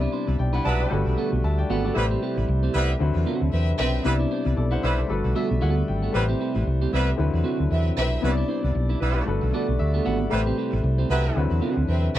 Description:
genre	disco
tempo	115 BPM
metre	4/4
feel	swing 56% on 16ths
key	A dorian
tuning	A4 = 436 Hz
part	clean electric guitar	accompaniment	0.0-12.1 s	B3 to C5	-29 LUFS	right 8 dB	none
part	clear baby grand piano	accompaniment	0.0-12.2 s	C3 to B5	-29 LUFS	left 7 dB	none
part	percussive tonewheel organ	sustained chords	0.0-12.2 s	C3 to F#4	-30 LUFS	right 1 dB	overdrive, chorus vibrato, slow rotary speaker
part	hollow-body short-scale fingered electric bass	bass	0.0-12.2 s	G1 to E2	-23 LUFS	equal	none
part	clear horn section	stabs	0.6-11.4 s	F#3 to B4	-30 LUFS	right 2 dB	tape echo
part	rich studio violin section	second line	2.7-12.2 s	C4 to E5	-29 LUFS	right 1 dB	none
room	little or no reverb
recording	dry, close 1970s-style studio recording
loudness	-21 LUFS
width	side -13 dB against mid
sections	0.0-12.2 A section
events	grand piano fill 4.6-6.1, 9.3-10.3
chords	0.0 Cmaj9; 0.9 Gmaj9; 2.0 Am9; 3.0 D13; 4.0 Cmaj9; 5.1 Gmaj9; 6.1 Am9; 7.2 D13; 8.2 Cmaj9; 9.3 Gmaj9; 10.3 Am9; 11.4 D13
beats	0.39 0.91 1.44 | 1.96 2.48 3.00 3.53 | 4.05 4.57 5.09 5.62 | 6.14 6.66 7.18 7.71 | 8.23 8.75 9.27 9.79 | 10.31 10.84 11.36 11.88

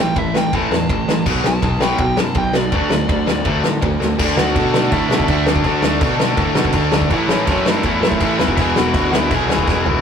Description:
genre	punk rock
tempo	164 BPM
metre	4/4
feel	straight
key	unclear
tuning	A4 = 443 Hz
part	dark smooth lead guitar	melody	0.0-9.8 s	C#4 to A5	-23 LUFS	equal	overdrive
part	crunchy overdriven guitar	riff	0.0-10.0 s	E2 to D4	-23 LUFS	right 4 dB	none
part	fuzz guitar	riff	0.0-9.9 s	E2 to D4	-23 LUFS	right 2 dB	distortion
part	tight distorted guitar	riff	0.0-10.0 s	A2 to F#4	-22 LUFS	left 4 dB	distortion
part	fuzz picked electric bass	bass	0.0-10.0 s	E1 to B2	-22 LUFS	equal	overdrive
part	loose indie drum kit	drums	0.2-9.9 s	crash cymbal, kick drum, ride cymbal, snare drum, toms	-19 LUFS	equal	none
room	moderate booth ambience, RT60 0.2 s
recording	rough rehearsal-room recording, tube saturation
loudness	-14 LUFS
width	side -7 dB against mid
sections	0.0-4.2 A section; 4.2-10.0 B section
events	lead electric guitar solo 0.0-4.2; drum fill 4.0, 9.7-10.0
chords	0.0 A5; 1.3 B5; 2.7 D; 7.1 A; 8.4 E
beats	0.16 0.53 0.89 | 1.26 1.63 2.00 2.36 | 2.73 3.10 3.46 3.83 | 4.19 4.56 4.92 5.29 | 5.66 6.02 6.39 6.75 | 7.12 7.48 7.85 8.21 | 8.58 8.95 9.31 9.68

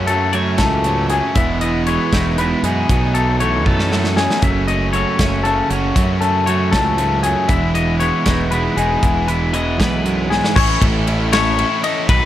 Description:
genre	math rock and midwest emo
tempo	78 BPM (dotted quarters)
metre	6/8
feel	straight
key	E major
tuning	A4 = 441 Hz
part	twelve-string electric guitar	accompaniment	0.0-10.6 s	E2 to D#4	-21 LUFS	right 4 dB	none
part	twangy electric guitar	arpeggios	0.0-12.3 s	F#4 to E5	-20 LUFS	left 5 dB	tape echo
part	crunchy overdriven guitar	riff	0.0-12.3 s	A2 to A4	-22 LUFS	right 1 dB	none
part	fuzz fingered electric bass	bass	0.0-12.2 s	E1 to F#2	-20 LUFS	equal	overdrive
part	modern studio drum kit	drums	0.1-12.2 s	crash cymbal, hi-hat, kick drum, ride cymbal, snare drum, toms	-19 LUFS	equal	none
room	light reverb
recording	none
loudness	-14 LUFS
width	side -12 dB against mid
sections	0.0-10.6 A section; 10.6-12.3 B section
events	drum fill 3.7-4.4, 10.3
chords	0.0 F#madd9; 1.4 Emaj7; 2.9 B9sus4; 4.4 F#madd9; 7.5 Emaj7; 9.0 Emaj9; 10.6 A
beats	0.59 | 1.36 2.13 | 2.90 3.66 | 4.43 5.20 | 5.96 6.73 | 7.50 8.27 | 9.03 9.80 | 10.56 11.33 | 12.09

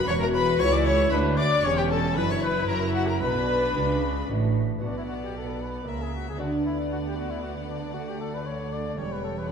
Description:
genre	classical, baroque-style concerto movement with solo episodes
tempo	115 BPM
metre	3/4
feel	straight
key	B minor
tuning	A4 = 442 Hz
part	clear chamber violin section	melody	0.0-9.5 s	E5 to D6	-35 LUFS	left 8 dB	none
part	warm trumpet	melody	0.0-9.5 s	D4 to D5	-31 LUFS	left 3 dB	none
part	lute	accompaniment	0.0-9.5 s	D2 to G4	-34 LUFS	right 1 dB	none
part	rich chamber viola section	accompaniment	0.0-9.5 s	G3 to F#4	-32 LUFS	left 1 dB	none
part	rich studio double bass section	bass	0.0-9.5 s	E1 to D2	-31 LUFS	right 3 dB	none
part	warm chamber cello section	bass	0.0-9.5 s	C#2 to D3	-31 LUFS	right 3 dB	none
part	clear chamber violin section	second line	0.1-9.5 s	F#4 to E5	-30 LUFS	left 3 dB	none
room	wet scoring stage reverb, RT60 1.6 s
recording	dark, warm production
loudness	-23 LUFS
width	side -6 dB against mid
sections	0.0-4.8 A section; 4.8-9.5 B section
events	none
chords	0.1 F#7/E; 1.1 Bm/D; 1.6 C#dim/E; 2.2 Bm/F#; 2.7 F#7; 3.2 Bm; 5.9 A#dim/C#; 6.4 Bm/D; 7.9 D; 9.0 C#dim/E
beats	| 0.08 0.60 1.12 | 1.64 2.16 2.68 | 3.22 3.76 4.29 | 4.83 5.35 5.87 | 6.39 6.91 7.43 | 7.95 8.47 8.98 | 9.50

